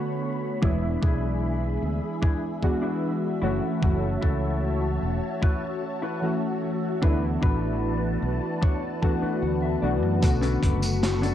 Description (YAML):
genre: vaporwave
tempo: 75 BPM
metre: 4/4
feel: straight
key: F# minor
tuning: A4 = 442 Hz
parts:
  - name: warbly lo-fi synth keys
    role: accompaniment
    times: 0.0-11.3 s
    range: D3 to C#5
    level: -27 LUFS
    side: left 1 dB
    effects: analog chorus, analog delay
  - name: soft string machine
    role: sustained chords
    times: 0.0-11.3 s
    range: A3 to C#6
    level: -34 LUFS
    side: equal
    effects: phaser, ensemble chorus
  - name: mellow electric guitar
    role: riff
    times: 0.2-11.3 s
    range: C#4 to A5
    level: -35 LUFS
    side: left 3 dB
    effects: wide subtle chorus, low-pass filter, analog delay
  - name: fingered electric bass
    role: bass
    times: 0.6-11.3 s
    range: E1 to F#2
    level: -27 LUFS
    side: equal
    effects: none
  - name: electronic kick drum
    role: drums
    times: 0.6-10.8 s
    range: none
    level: -23 LUFS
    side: equal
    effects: none
  - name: vintage drum kit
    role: drums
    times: 10.2-11.3 s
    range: hi-hat, snare drum, tambourine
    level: -31 LUFS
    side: equal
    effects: none
room: light reverb, small room ambience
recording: dark, warm production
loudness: -23 LUFS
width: side -11 dB against mid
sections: 0.0-10.2 A section; 10.2-11.3 B section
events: clean electric guitar fill 8.6-10.2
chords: 0.0 Bm9; 0.6 E7; 3.4 F#m7; 7.0 D6; 10.2 Bm9